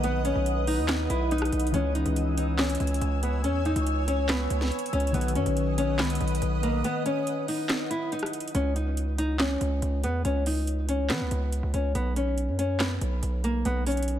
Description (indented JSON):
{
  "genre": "hip hop, trap",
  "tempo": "141 BPM",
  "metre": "4/4",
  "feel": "half-time",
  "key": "unclear",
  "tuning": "A4 = 440 Hz",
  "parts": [
    { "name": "nylon-string guitar", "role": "melody", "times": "0.0-14.2 s", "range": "A#3 to E4", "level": "-29 LUFS", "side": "left 1 dB", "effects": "low-pass filter, digital delay" },
    { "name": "concert harp", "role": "accompaniment", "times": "0.0-8.6 s", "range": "D#3 to G#4", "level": "-35 LUFS", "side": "left 7 dB", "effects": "low-pass filter" },
    { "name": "granular cloud pad", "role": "sustained chords", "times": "0.0-8.5 s", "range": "B4 to E6", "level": "-34 LUFS", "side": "right 1 dB", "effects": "built-in reverb" },
    { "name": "distorted 808-style bass", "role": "bass", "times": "0.0-14.2 s", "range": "B1 to E3", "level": "-27 LUFS", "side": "right 1 dB", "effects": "distortion" },
    { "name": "trap drum kit", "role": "drums", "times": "0.0-14.2 s", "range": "handclaps, hi-hat, rim click, snare drum", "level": "-32 LUFS", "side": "right 1 dB", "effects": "overdrive" }
  ],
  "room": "little or no reverb",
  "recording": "none",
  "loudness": "-24 LUFS",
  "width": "side -11 dB against mid",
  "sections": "0.0-8.5 A section; 8.5-14.2 B section",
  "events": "break 6.8-8.5",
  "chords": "0.0 B; 1.7 C#m; 5.1 B; 8.5 N.C.; 11.9 B5"
}